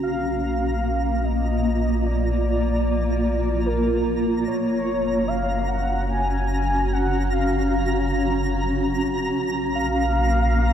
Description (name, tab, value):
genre	ambient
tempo	free time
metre	none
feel	none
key	unclear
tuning	A4 = 440 Hz
part	warm velvety synth lead	melody	0.0-10.7 s	A#4 to G#5	-27 LUFS	equal	chorus, tape echo
part	granular cloud pad	sustained chords	0.0-10.7 s	A#3 to A#5	-24 LUFS	equal	built-in reverb
part	warm sub bass	bass	0.0-10.7 s	F#1 to A#1	-25 LUFS	equal	none
part	twinkling granular texture	texture	0.0-10.7 s	A#5	-33 LUFS	right 1 dB	built-in reverb
room	wet cathedral reverb, RT60 5.0 s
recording	dark, warm production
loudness	-20 LUFS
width	side -9 dB against mid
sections	0.0-10.7 A section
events	fade-in on sub bass 0.0-10.7; fade-in on synth texture 0.0-10.7; fade-in on soft synth lead 0.0-10.7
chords	0.0 A#; 4.5 F#; 9.4 A#5